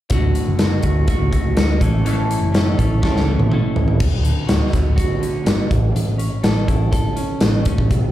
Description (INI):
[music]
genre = quiet-loud alternative rock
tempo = 123 BPM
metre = 4/4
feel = straight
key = D major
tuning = A4 = 439 Hz
[part]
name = clean electric guitar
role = arpeggios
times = 0.1-8.1 s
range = D2 to A4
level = -22 LUFS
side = equal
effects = phaser
[part]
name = hollow-body short-scale picked electric bass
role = bass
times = 0.1-8.1 s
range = D1 to D2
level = -19 LUFS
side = equal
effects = none
[part]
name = big rock drum kit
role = drums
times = 0.1-8.0 s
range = crash cymbal, hi-hat, kick drum, snare drum, toms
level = -19 LUFS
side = equal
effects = none
[sound]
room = little or no reverb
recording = live gig heard through the venue's PA, club reverb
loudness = -15 LUFS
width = side -13 dB against mid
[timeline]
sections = 0.1-4.0 A section; 4.0-8.1 B section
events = drum fill 3.0-4.0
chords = 0.1 D; 1.8 A; 4.0 D; 5.7 A